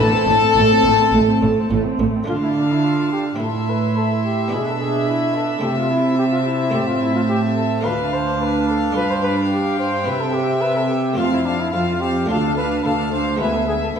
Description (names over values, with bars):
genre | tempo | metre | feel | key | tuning
classical, baroque-style concerto movement with solo episodes | 108 BPM | 4/4 | straight | A minor | A4 = 440 Hz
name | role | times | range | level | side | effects
dark trumpet | melody | 0.0-14.0 s | D4 to C5 | -23 LUFS | left 2 dB | none
warm chamber violin section | melody | 0.0-14.0 s | G5 to C6 | -30 LUFS | left 5 dB | none
warm chamber violin section | second line | 0.0-14.0 s | A4 to F5 | -23 LUFS | left 2 dB | none
buff-stop harpsichord | accompaniment | 0.0-14.0 s | D2 to F4 | -27 LUFS | equal | none
dark chamber viola section | accompaniment | 0.0-14.0 s | A3 to E4 | -23 LUFS | right 3 dB | none
warm chamber cello section | bass | 0.0-14.0 s | D2 to D3 | -22 LUFS | right 2 dB | none
warm studio double bass section | bass | 0.0-2.1 s | A1 | -25 LUFS | right 2 dB | none
room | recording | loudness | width
wet recital hall reverb, RT60 1.7 s | heard from further back in the room | -16 LUFS | side -7 dB against mid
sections
0.0-2.3 A section; 2.3-14.0 B section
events
none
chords
0.0 Am; 2.3 Dm; 3.4 Am; 4.5 E5/B; 5.6 Am/C; 6.7 Am; 7.9 Dm; 9.0 G5; 10.1 C; 11.2 F; 12.3 Dm; 13.4 E7/D